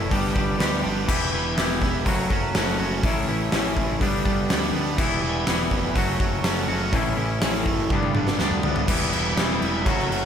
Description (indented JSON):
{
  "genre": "indie rock",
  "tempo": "123 BPM",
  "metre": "4/4",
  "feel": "straight",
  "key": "E dorian",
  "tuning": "A4 = 440 Hz",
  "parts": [
    { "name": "bright tonewheel organ", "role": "sustained chords", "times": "0.0-10.3 s", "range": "G4 to D6", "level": "-36 LUFS", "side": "equal", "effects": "none" },
    { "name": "crunchy overdriven guitar", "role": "riff", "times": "0.0-10.3 s", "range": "G2 to D4", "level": "-28 LUFS", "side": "right 8 dB", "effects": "wide subtle chorus, tape echo, slapback echo" },
    { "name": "twangy electric guitar", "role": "riff", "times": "0.0-10.3 s", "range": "G2 to G4", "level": "-26 LUFS", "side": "left 5 dB", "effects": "wide subtle chorus, slapback echo" },
    { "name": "fuzz picked electric bass", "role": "bass", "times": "0.0-10.3 s", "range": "E1 to D2", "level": "-29 LUFS", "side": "equal", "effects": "overdrive" },
    { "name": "big rock drum kit", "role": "drums", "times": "0.1-10.2 s", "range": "crash cymbal, hi-hat, kick drum, snare drum, toms", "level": "-24 LUFS", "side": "equal", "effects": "none" }
  ],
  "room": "light reverb, small room ambience",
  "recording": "none",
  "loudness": "-20 LUFS",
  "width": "side -8 dB against mid",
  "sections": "0.0-8.9 A section; 8.9-10.3 B section",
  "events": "drum fill 7.9-8.9",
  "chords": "0.1 G; 1.1 Em; 2.1 F#m; 3.0 A; 4.0 G; 5.0 Em; 6.0 F#m; 6.9 A; 7.9 G; 8.9 Em",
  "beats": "0.12 0.60 | 1.09 1.58 2.06 2.55 | 3.04 3.52 4.01 4.50 | 4.98 5.47 5.96 6.44 | 6.93 7.42 7.90 8.39 | 8.88 9.37 9.86"
}